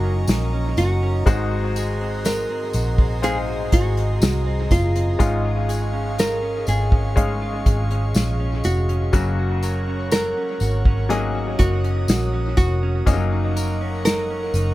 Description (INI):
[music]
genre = pop ballad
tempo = 61 BPM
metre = 4/4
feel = straight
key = F# major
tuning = A4 = 438 Hz
[part]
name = nylon-string guitar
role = melody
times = 0.0-14.7 s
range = E#4 to A#4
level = -26 LUFS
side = equal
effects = dub echo
[part]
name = bright grand piano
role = accompaniment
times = 0.0-14.7 s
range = G#2 to E#5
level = -28 LUFS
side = left 4 dB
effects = dub echo
[part]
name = airy breathy pad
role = sustained chords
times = 0.0-14.7 s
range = G#4 to D#6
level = -32 LUFS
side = equal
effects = chorus
[part]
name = direct-recorded clean electric guitar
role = arpeggios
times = 0.0-14.7 s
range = G#2 to A#4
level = -32 LUFS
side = right 5 dB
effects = lush chorus
[part]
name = vintage muted fingered electric bass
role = bass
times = 0.0-14.7 s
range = E#1 to B#1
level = -22 LUFS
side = equal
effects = none
[part]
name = unplugged drum kit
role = drums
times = 0.3-14.7 s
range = hi-hat, kick drum, snare drum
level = -19 LUFS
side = equal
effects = none
[part]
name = tambourine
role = percussion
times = 0.3-14.7 s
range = none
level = -36 LUFS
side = left 4 dB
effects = none
[sound]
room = studio ambience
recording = echo-heavy mix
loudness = -18 LUFS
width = side -16 dB against mid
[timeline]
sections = 0.0-14.7 A section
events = none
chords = 0.0 D#m7/F#; 1.3 G#7; 5.2 C#add9/G#; 9.1 F#; 13.1 D#m7/F#